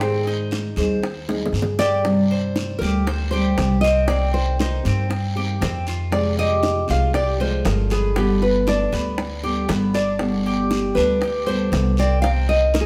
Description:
latin, Cuban son and guajira; 118 BPM; 4/4; straight; A4 = 441 Hz
nylon-string guitar; melody; 0.0-12.9 s; G4 to F5; -25 LUFS; equal
nylon-string guitar; second line; 0.0-1.5 s; Ab4; -37 LUFS; equal
nylon-string guitar; accompaniment; 0.0-12.9 s; B2 to Ab4; -26 LUFS; equal
Cuban tres; arpeggios; 0.0-12.9 s; B3 to C5; -32 LUFS; equal
upright bass; bass; 0.0-12.9 s; G1 to Ab2; -25 LUFS; equal
bongos; percussion; 0.0-12.9 s; -30 LUFS; equal
guiro; percussion; 0.0-12.9 s; -38 LUFS; equal
wet studio reverb, RT60 0.9 s; band playing live in one room; -20 LUFS; mono
0.0-2.0 A section; 2.0-12.9 B section
drum fill 1.3-2.0
0.0 Abmaj7; 2.0 Gsus4; 4.1 Cm7; 6.1 Fmadd9; 8.2 G; 12.2 Cm7

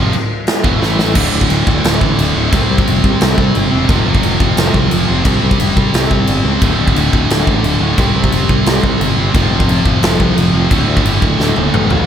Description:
heavy metal; 176 BPM; 4/4; straight; D minor; A4 = 439 Hz
scooped high-gain guitar; riff; 0.0-12.1 s; D2 to C4; -18 LUFS; left 9 dB; distortion, slapback echo
scooped high-gain guitar; riff; 0.0-12.1 s; D2 to C4; -17 LUFS; right 9 dB; distortion, slapback echo
picked electric bass; bass; 0.0-12.0 s; D1 to D2; -17 LUFS; equal
big rock drum kit; drums; 0.1-12.0 s; china cymbal, crash cymbal, kick drum, snare drum, toms; -14 LUFS; equal
light reverb, studio reverb; -10 LUFS; side -9 dB against mid
0.0-1.2 A section; 1.2-12.1 B section
drum fill 0.8-1.2, 11.4-12.1
0.0 N.C.; 0.8 A5; 1.2 D5; 2.5 C5; 3.9 F5; 5.3 C5; 6.6 D5; 8.0 C5; 9.3 F5; 10.7 D5

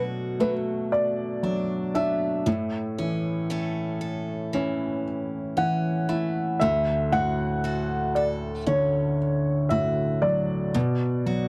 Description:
pop; 58 BPM; 4/4; straight; D major; A4 = 440 Hz
felt-muted upright piano; accompaniment; 0.0-11.5 s; D2 to E4; -28 LUFS; equal
picked steel-string acoustic guitar; arpeggios; 0.0-11.5 s; A2 to A4; -36 LUFS; equal
dark concert grand piano; melody; 0.4-11.5 s; B4 to F#5; -29 LUFS; equal; tape echo
little or no reverb; dark, warm production; -26 LUFS; mono
0.0-11.5 A section
0.0 Bm7; 2.5 A; 6.6 Dmaj7; 10.7 Bm7

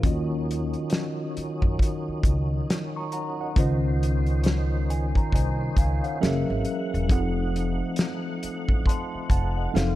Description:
R&B, neo-soul; 68 BPM; 4/4; swing 62% on 16ths; A4 = 436 Hz
mellow tine electric piano; accompaniment; 0.0-10.0 s; Eb3 to Db6; -29 LUFS; left 1 dB; medium stereo tremolo
tonewheel organ; sustained chords; 0.0-10.0 s; Eb3 to Gb5; -35 LUFS; right 1 dB; slow rotary speaker, overdrive, chorus vibrato
upright bass; bass; 0.0-10.0 s; Fb1 to Gb2; -26 LUFS; equal
warm soul drum kit; drums; 0.0-10.0 s; hi-hat, kick drum, snare drum; -24 LUFS; equal
light reverb, small room ambience; dark, warm production; -23 LUFS; side -15 dB against mid
0.0-10.0 A section
tine electric piano fill 4.4-7.1
0.0 Ebm9; 3.6 Dbmaj9; 6.2 Gb9; 7.1 F7b9

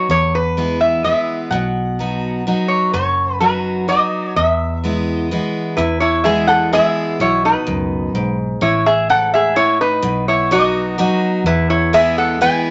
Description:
honky-tonk and classic country; 127 BPM; 3/4; straight; E major; A4 = 440 Hz
lap resonator guitar; melody; 0.0-12.7 s; D#4 to G#5; -18 LUFS; equal
picked steel-string acoustic guitar; accompaniment; 0.0-12.7 s; E2 to F#4; -23 LUFS; equal
vintage muted fingered electric bass; bass; 0.1-12.5 s; F#1 to E2; -25 LUFS; equal
moderate studio reverb, RT60 0.5 s; nothing above 7.9 kHz; -17 LUFS; mono
0.0-5.8 A section; 5.8-12.7 B section
0.1 E; 1.5 B; 4.4 E; 8.6 A5; 10.0 B; 11.5 E

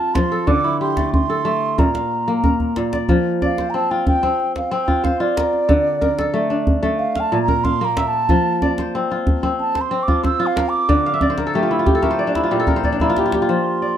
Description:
west african traditional, West African string and xylophone music; 92 BPM; 4/4; straight; F major; A4 = 440 Hz
mellow baroque flute; melody; 0.0-14.0 s; D5 to E6; -21 LUFS; right 3 dB; tape echo
kora; arpeggios; 0.0-14.0 s; Bb2 to F5; -19 LUFS; left 1 dB
djembe; percussion; 0.2-13.5 s; -20 LUFS; equal
light reverb; dark, warm production; -16 LUFS; side -10 dB against mid
0.0-3.1 A section; 3.1-13.5 B section
drum fill 2.6-3.1, 12.8-13.5; flute solo 3.1-13.5; kora fill 11.1-13.5
0.5 D5; 1.8 Bb; 3.1 F5; 5.7 D5; 7.0 Bb5; 8.3 F5; 10.9 D5; 12.2 N.C.

